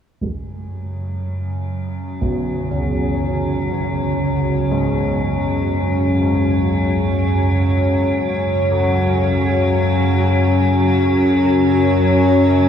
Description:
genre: dark ambient drone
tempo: free time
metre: none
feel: none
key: unclear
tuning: A4 = 440 Hz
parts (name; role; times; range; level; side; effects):
- granular cloud pad; sustained chords; 1.6-12.7 s; F#3 to C#5; -26 LUFS; equal; built-in reverb
- overtone-sweeping drone; drone; 0.4-12.7 s; F#2 to C#3; -17 LUFS; equal; chorus, built-in reverb
- taiko ensemble; percussion; 0.2-2.4 s; none; -30 LUFS; right 2 dB; low-pass filter on perc
- metallic inharmonic drone; texture; 1.2-12.7 s; C#4; -23 LUFS; equal; chorus, built-in reverb
- old church bells; arpeggios; 2.2-12.7 s; B2 to F#4; -23 LUFS; equal; analog delay
room: wet huge ambient reverb, RT60 7.7 s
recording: dreamy mix soaked in reverb, small room ambience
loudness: -15 LUFS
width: side -8 dB against mid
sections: 0.2-12.7 A section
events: fade-in on ambient pad 0.2-12.7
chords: 0.2 F#5

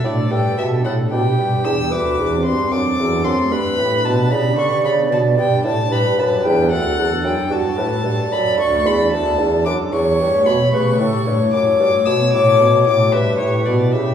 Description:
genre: classical, baroque-style sonata movement with continuo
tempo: 75 BPM (dotted quarters)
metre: 12/8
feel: straight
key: D major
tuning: A4 = 441 Hz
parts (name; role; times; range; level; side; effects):
- warm violin; melody; 0.0-14.1 s; C#5 to E6; -23 LUFS; left 4 dB; none
- wooden flute; second line; 0.0-14.1 s; F#4 to D5; -19 LUFS; equal; none
- pipe organ, foundations; accompaniment; 0.0-14.1 s; D2 to B4; -20 LUFS; equal; none
- mellow bassoon; bass; 0.0-14.1 s; D2 to D3; -21 LUFS; right 1 dB; none
room: wet recital hall reverb, RT60 1.7 s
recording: heard from further back in the room, small room ambience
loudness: -14 LUFS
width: side -8 dB against mid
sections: 0.0-14.1 A section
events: none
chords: 0.3 G; 1.9 D7; 3.5 G; 6.7 D; 9.9 A7/E; 11.5 D/F#; 13.1 Em/G

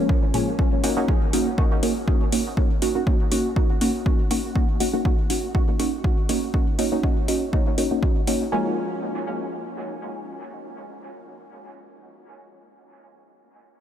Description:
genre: dub techno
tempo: 121 BPM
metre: 4/4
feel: straight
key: Bb minor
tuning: A4 = 440 Hz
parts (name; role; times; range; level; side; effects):
- deep mellow chord stab; stabs; 0.0-11.7 s; F3 to Gb4; -24 LUFS; equal; chorus, phaser, sidechain pumping, dub echo
- electronic kick drum; drums; 0.1-8.1 s; none; -22 LUFS; equal; overdrive
- warbly dusty pluck; riff; 0.3-11.7 s; F4 to Db6; -36 LUFS; right 2 dB; ensemble chorus, sidechain pumping, dub echo
- electronic hi-hat; drums; 0.3-8.4 s; none; -30 LUFS; left 2 dB; overdrive
room: moderate huge ambient reverb, RT60 8.9 s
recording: dreamy mix soaked in reverb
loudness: -20 LUFS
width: side -10 dB against mid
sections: 0.0-8.5 A section; 8.5-12.5 B section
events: filter sweep on synth stab 0.0-8.5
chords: 0.0 Bbm7; 0.6 Ebm7; 8.5 Bbm7

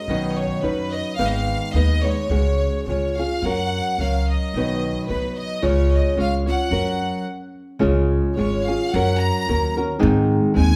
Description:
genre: mexican folk, mariachi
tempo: 109 BPM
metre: 2/4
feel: swing 54% on 8ths, rubato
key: F# major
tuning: A4 = 441 Hz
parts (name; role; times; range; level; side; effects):
- clear studio violin section; melody; 0.0-10.8 s; B4 to Bb5; -28 LUFS; equal; none
- nylon-string guitar; accompaniment; 0.0-10.8 s; G#2 to C#5; -24 LUFS; equal; none
- upright bass; bass; 0.1-10.8 s; G#1 to Ab2; -24 LUFS; equal; none
room: wet large studio reverb, RT60 1.1 s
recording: band playing live in one room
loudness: -21 LUFS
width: mono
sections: 0.0-7.8 A section; 7.8-10.8 B section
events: stop 7.3-7.8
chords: 0.1 Badd9; 1.2 G#m; 2.3 C#sus4; 2.9 C#; 3.4 F#; 4.5 B; 5.6 C#; 6.7 F#; 7.8 Db; 8.9 Gb; 10.0 Ab

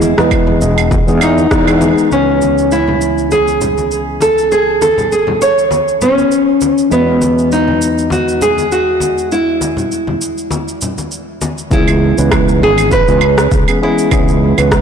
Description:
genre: sunset chillout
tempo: 100 BPM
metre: 4/4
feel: swing 55% on 16ths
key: unclear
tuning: A4 = 441 Hz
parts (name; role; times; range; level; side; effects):
- nylon-string guitar; melody; 0.0-14.8 s; B3 to C#5; -13 LUFS; equal; tape echo
- mellow tine electric piano; accompaniment; 0.0-14.8 s; E3 to G#5; -19 LUFS; moving between left 5 dB and right 4 dB; auto-pan, ping-pong delay
- fretless electric bass; bass; 0.0-14.8 s; E1 to E2; -17 LUFS; equal; ensemble chorus
- electronic shaker, rim click and claves; drums; 0.0-14.8 s; none; -20 LUFS; right 2 dB; overdrive
- congas; percussion; 0.0-11.5 s; none; -23 LUFS; left 3 dB; none
- electronic kick drum; drums; 0.3-1.6, 11.7-14.8 s; none; -16 LUFS; equal; overdrive
room: moderate lush hall reverb, RT60 2.5 s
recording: blown-out, overdriven recording, overdrive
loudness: -10 LUFS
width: side -7 dB against mid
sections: 0.0-2.1 A section; 2.1-11.7 B section; 11.7-14.8 C section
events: band accent 1.5-1.8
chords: 0.0 Emaj7; 2.1 C#m7; 6.9 Emaj9; 11.7 C#m7

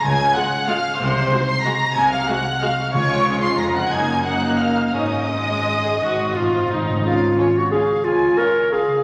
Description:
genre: classical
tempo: 161-203 BPM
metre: 3/4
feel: rubato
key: Db major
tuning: A4 = 443 Hz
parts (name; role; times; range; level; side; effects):
- rich studio violin section; melody; 0.0-8.8 s; Ab5 to C7; -27 LUFS; equal; none
- warm studio violin section; second line; 0.0-9.0 s; C5 to C6; -25 LUFS; equal; none
- concert harp; arpeggios; 0.0-9.0 s; Gb2 to F5; -29 LUFS; equal; none
- clear studio cello section; bass; 0.0-8.3 s; F2 to Db3; -32 LUFS; equal; none
- warm studio double bass section; bass; 0.0-8.3 s; F1 to Db2; -34 LUFS; equal; none
- warm studio viola section; accompaniment; 0.4-8.8 s; Ab3 to Ab4; -26 LUFS; equal; none
- timpani; percussion; 2.9-3.4, 6.0-7.0 s; Ab2 to Db3; -30 LUFS; equal; none
- warm clarinet; second line; 7.1-9.0 s; F4 to Bb4; -19 LUFS; equal; none
room: wet scoring stage reverb, RT60 1.7 s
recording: vinyl crackle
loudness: -19 LUFS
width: mono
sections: 0.0-7.1 A section; 7.1-9.0 B section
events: timpani fill 6.0-7.1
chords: 0.0 Db; 1.0 Ab7/C; 2.9 Db; 3.9 Ebm/Gb; 4.9 Absus4; 6.0 Ab; 7.1 Db

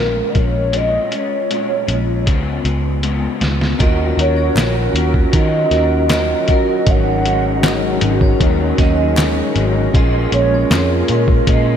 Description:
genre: indie pop, bedroom pop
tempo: 78 BPM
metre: 4/4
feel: straight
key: Eb minor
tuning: A4 = 441 Hz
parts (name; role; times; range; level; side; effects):
- hollow clarinet-like synth lead; melody; 0.0-11.8 s; Bb4 to Gb5; -20 LUFS; right 2 dB; lush chorus, ping-pong delay
- electric guitar through a small old amp; accompaniment; 0.0-11.8 s; Ab2 to Bb4; -22 LUFS; left 4 dB; ensemble chorus, warbly pitch drift
- vintage muted picked electric bass; bass; 0.0-11.8 s; Ab1 to Eb3; -18 LUFS; equal; none
- lo-fi sampler-style drum kit; drums; 0.3-11.7 s; hi-hat, kick drum, snare drum; -17 LUFS; equal; none
- vibraphone with medium mallets; second line; 3.8-11.3 s; Bb4 to Eb5; -25 LUFS; right 3 dB; lush chorus, ping-pong delay
- mellow tonewheel organ; accompaniment; 3.8-11.8 s; Db4 to Bb4; -22 LUFS; right 3 dB; slow rotary speaker, cassette tape
- warm brass ensemble; sustained chords; 3.8-11.8 s; Eb3 to Db4; -24 LUFS; left 2 dB; stereo widening
- group handclap; percussion; 4.6-10.9 s; none; -31 LUFS; left 3 dB; none
room: moderate lush hall reverb, RT60 2.9 s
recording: dreamy mix soaked in reverb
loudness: -13 LUFS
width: side -8 dB against mid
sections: 0.0-3.8 A section; 3.8-11.8 B section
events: drum fill 0.7-3.8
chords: 0.0 Bbm7; 2.3 Db7; 3.8 Ebm7; 6.9 Ab7sus4; 9.9 Bbm7

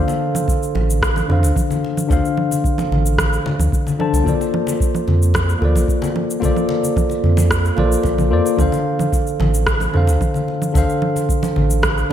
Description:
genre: sunset chillout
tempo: 111 BPM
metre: 4/4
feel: straight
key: unclear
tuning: A4 = 441 Hz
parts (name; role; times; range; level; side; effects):
- tine electric piano; accompaniment; 0.0-12.1 s; D3 to A5; -19 LUFS; moving between left 4 dB and right 5 dB; auto-pan, low-pass filter, digital delay
- warm sub bass; bass; 0.0-12.0 s; A1 to F2; -17 LUFS; equal; none
- electronic shaker, congas and rim click; drums; 0.1-12.1 s; none; -23 LUFS; right 2 dB; studio reverb, gated reverb
- congas; percussion; 0.1-12.1 s; none; -26 LUFS; left 3 dB; none
- electronic kick drum; drums; 0.5-11.9 s; none; -21 LUFS; equal; studio reverb
room: moderate lush hall reverb, RT60 1.9 s, digital ambience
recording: bright 1980s-style digital production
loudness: -15 LUFS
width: side -10 dB against mid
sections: 0.0-12.1 A section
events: none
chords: 0.0 Dm7; 4.3 Bbmaj9; 8.6 Dm7

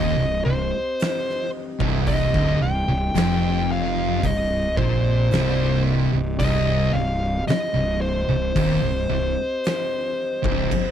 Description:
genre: stoner and doom metal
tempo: 56 BPM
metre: 4/4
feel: straight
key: C minor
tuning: A4 = 440 Hz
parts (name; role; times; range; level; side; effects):
- fuzz lead guitar; melody; 0.0-10.9 s; C5 to G5; -25 LUFS; equal; distortion, slapback echo
- glass harmonica; sustained chords; 0.0-10.7 s; C4 to Eb5; -34 LUFS; left 2 dB; none
- thick fuzz guitar; riff; 0.0-10.7 s; C2 to Bb2; -25 LUFS; left 9 dB; distortion
- thick fuzz guitar; riff; 0.0-10.7 s; C2 to Bb2; -24 LUFS; right 7 dB; distortion
- fuzz fingered electric bass; bass; 0.0-10.7 s; C1 to Bb1; -27 LUFS; equal; overdrive
- oversized low-tuned drum kit; drums; 1.0-10.9 s; crash cymbal, hi-hat, kick drum, snare drum; -28 LUFS; equal; none
room: little or no reverb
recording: faint mains hum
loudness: -19 LUFS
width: side -9 dB against mid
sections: 0.0-10.9 A section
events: none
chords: 0.0 Cm

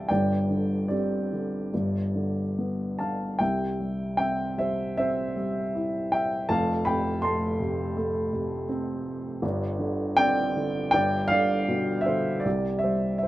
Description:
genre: classical, lyrical solo piano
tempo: 69-83 BPM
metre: 4/4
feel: rubato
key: C major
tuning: A4 = 440 Hz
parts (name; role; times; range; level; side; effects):
- dark upright piano; solo; 0.0-13.3 s; F1 to C6; -24 LUFS; equal; none
room: little or no reverb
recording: close, detailed microphones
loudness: -24 LUFS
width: side -16 dB against mid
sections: 0.0-13.3 A section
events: none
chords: 0.1 Gsus4; 1.7 G; 3.4 C; 6.5 F; 9.4 Gsus4; 10.9 G; 12.5 C

